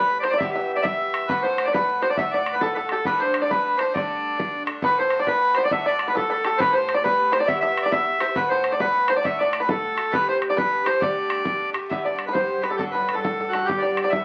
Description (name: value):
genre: celtic folk, Celtic polka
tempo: 136 BPM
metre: 2/4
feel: swing 64% on 8ths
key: G major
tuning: A4 = 440 Hz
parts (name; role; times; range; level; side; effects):
- accordion; melody; 0.0-14.2 s; F#4 to E5; -24 LUFS; equal; none
- bluegrass banjo; second line; 0.0-14.2 s; G4 to E5; -28 LUFS; equal; none
- Irish bouzouki; accompaniment; 0.0-14.2 s; G2 to G4; -32 LUFS; equal; none
- bodhran; percussion; 0.2-14.2 s; none; -32 LUFS; equal; none
- dark cello; drone; 11.9-14.2 s; G2; -42 LUFS; equal; none
room: wet studio ambience, RT60 0.5 s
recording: very old 78 rpm record, vinyl crackle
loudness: -22 LUFS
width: mono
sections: 0.0-4.8 A section; 4.8-11.9 A section; 11.9-14.2 B section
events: none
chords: 0.4 Em; 1.3 D; 3.1 Gsus2; 4.8 D; 6.6 Gsus2; 7.5 Em; 8.4 D; 10.1 Gsus2; 11.9 G; 12.8 Dadd9; 13.7 G